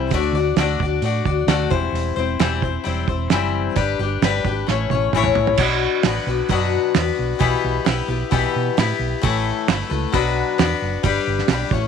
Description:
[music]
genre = folk rock and heartland rock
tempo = 132 BPM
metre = 4/4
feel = straight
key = D mixolydian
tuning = A4 = 440 Hz
[part]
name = picked steel-string acoustic guitar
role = accompaniment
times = 0.0-11.9 s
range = A2 to D5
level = -20 LUFS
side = left 10 dB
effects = none
[part]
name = hollow-body short-scale fingered electric bass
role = bass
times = 0.0-11.8 s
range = E1 to B2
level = -24 LUFS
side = right 2 dB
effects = none
[part]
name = cloth-damped thuddy drum kit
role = drums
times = 0.1-11.8 s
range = crash cymbal, hi-hat, kick drum, snare drum, toms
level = -22 LUFS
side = right 8 dB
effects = none
[sound]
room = light reverb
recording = 1960s-style stereo with parts hard left and right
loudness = -17 LUFS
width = side -7 dB against mid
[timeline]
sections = 0.0-5.6 A section; 5.6-11.9 B section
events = drum fill 4.7-5.6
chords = 0.1 D; 1.7 C/E; 3.8 G; 4.7 A; 5.6 Bm; 7.4 Em/B; 9.2 Asus2; 10.1 Bm; 11.0 G

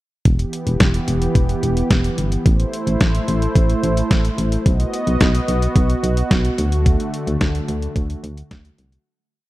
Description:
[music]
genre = synth-pop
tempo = 109 BPM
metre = 4/4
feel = straight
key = E minor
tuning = A4 = 440 Hz
[part]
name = warm analog pad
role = sustained chords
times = 0.3-9.0 s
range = D3 to D#5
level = -22 LUFS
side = equal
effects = chorus
[part]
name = solid FM bass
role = bass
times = 0.3-9.0 s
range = E1 to D2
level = -19 LUFS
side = equal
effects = none
[part]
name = detuned 8-bit digital drum machine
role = drums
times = 0.3-9.1 s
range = hi-hat, kick drum, snare drum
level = -18 LUFS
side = equal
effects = none
[sound]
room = light reverb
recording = dark, warm production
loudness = -16 LUFS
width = side -17 dB against mid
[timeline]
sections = 0.3-9.1 verse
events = fade-out 6.9-9.1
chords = 0.3 Em; 2.5 Am; 4.7 B; 6.6 D

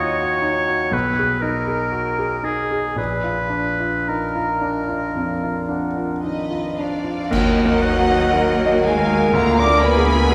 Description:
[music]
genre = classical, romantic movement for piano and orchestra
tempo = 54-64 BPM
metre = 4/4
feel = rubato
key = Eb minor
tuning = A4 = 437 Hz
[part]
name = clear grand piano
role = melody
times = 0.0-10.3 s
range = Bb1 to Eb5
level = -24 LUFS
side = equal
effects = none
[part]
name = bright clarinet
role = second line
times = 0.0-10.3 s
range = Ab4 to Db5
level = -29 LUFS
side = equal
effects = none
[part]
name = clear oboe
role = second line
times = 0.0-6.2 s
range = Ab4 to Db5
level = -25 LUFS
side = equal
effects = none
[part]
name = cymbal swell, clash cymbals and concert bass drum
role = percussion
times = 3.0-9.3 s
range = none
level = -32 LUFS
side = equal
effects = none
[part]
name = mellow hollow silver concert flute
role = second line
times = 4.1-10.3 s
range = Eb5 to D6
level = -28 LUFS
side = equal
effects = none
[part]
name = clear studio violin section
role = melody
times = 6.2-10.3 s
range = Eb5 to D6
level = -29 LUFS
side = equal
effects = none
[part]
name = clear studio violin section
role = second line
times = 6.2-10.3 s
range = Cb5 to Bb5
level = -30 LUFS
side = equal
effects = none
[part]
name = mellow French horn section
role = sustained chords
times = 6.3-10.3 s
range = Eb3 to D4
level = -25 LUFS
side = equal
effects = none
[part]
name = rich studio viola section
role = accompaniment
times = 7.3-10.3 s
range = Ab3 to Ab4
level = -28 LUFS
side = equal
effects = none
[part]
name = warm studio cello section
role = bass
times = 7.3-10.3 s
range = D2 to Eb2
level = -30 LUFS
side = equal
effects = none
[part]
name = warm studio double bass section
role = bass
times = 7.3-10.3 s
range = D2 to Eb2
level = -29 LUFS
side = equal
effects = none
[sound]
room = wet scoring stage reverb, RT60 1.9 s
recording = recorded in a church or concert hall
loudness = -20 LUFS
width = mono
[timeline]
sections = 0.0-7.3 A section; 7.3-10.3 B section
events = band accent 7.3-8.3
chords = 0.0 Ebm; 0.9 Abm/Cb; 3.0 Bb; 7.3 Ebm; 9.3 Bb7/D

